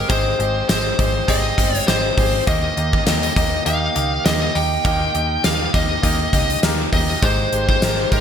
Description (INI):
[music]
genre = 1980s-style pop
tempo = 101 BPM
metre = 4/4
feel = swing 55% on 16ths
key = Ab major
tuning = A4 = 441 Hz
[part]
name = smooth overdriven lead guitar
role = melody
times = 0.0-8.2 s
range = Bb4 to G5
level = -21 LUFS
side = left 1 dB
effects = none
[part]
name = bright grand piano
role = accompaniment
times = 0.0-8.2 s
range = Ab2 to Eb5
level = -24 LUFS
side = left 2 dB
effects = none
[part]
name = sludgy distorted guitar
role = accompaniment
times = 0.0-8.2 s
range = Eb3 to Ab4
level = -32 LUFS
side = right 1 dB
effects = none
[part]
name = vintage muted fingered electric bass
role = bass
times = 0.1-8.2 s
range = G1 to Eb2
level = -24 LUFS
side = right 1 dB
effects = none
[part]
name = gated 80s drum kit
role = drums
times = 0.1-8.2 s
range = hi-hat, kick drum, snare drum, tambourine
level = -19 LUFS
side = equal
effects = gated reverb
[sound]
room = light reverb, small room ambience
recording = bright 1980s-style digital production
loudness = -16 LUFS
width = side -8 dB against mid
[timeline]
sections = 0.0-8.2 A section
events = none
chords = 0.0 Abmaj7; 2.5 Eb; 7.2 Abmaj7